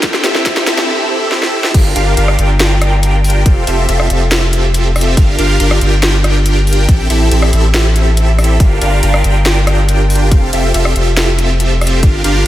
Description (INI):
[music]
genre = future bass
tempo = 140 BPM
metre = 4/4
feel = half-time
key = G dorian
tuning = A4 = 440 Hz
[part]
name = supersaw chords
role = riff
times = 0.0-12.4 s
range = C4 to G5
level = -15 LUFS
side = equal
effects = phaser, sidechain pumping, analog delay
[part]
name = saturated sub bass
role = bass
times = 0.0-12.4 s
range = F1 to A1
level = -12 LUFS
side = equal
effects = sidechain pumping, high-pass filter
[part]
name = electronic kick drum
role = drums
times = 0.0-12.1 s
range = none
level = -10 LUFS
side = equal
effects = none
[part]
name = trap drum kit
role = drums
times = 0.0-12.3 s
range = crash cymbal, hi-hat, rim click, snare drum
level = -17 LUFS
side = equal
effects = none
[sound]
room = moderate lush hall reverb, RT60 2.1 s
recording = dreamy mix soaked in reverb, high-pass filter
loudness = -9 LUFS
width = side -14 dB against mid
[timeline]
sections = 0.0-1.7 A section; 1.7-12.5 B section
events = build-up 0.0-1.7; drum fill 0.0-0.9, 1.3-1.7; drop 1.7-12.5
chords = 0.0 Am7; 1.7 Gm7; 3.5 Fmaj9; 5.2 Gm7; 6.9 Am7; 8.6 Gm7; 10.3 Fmaj9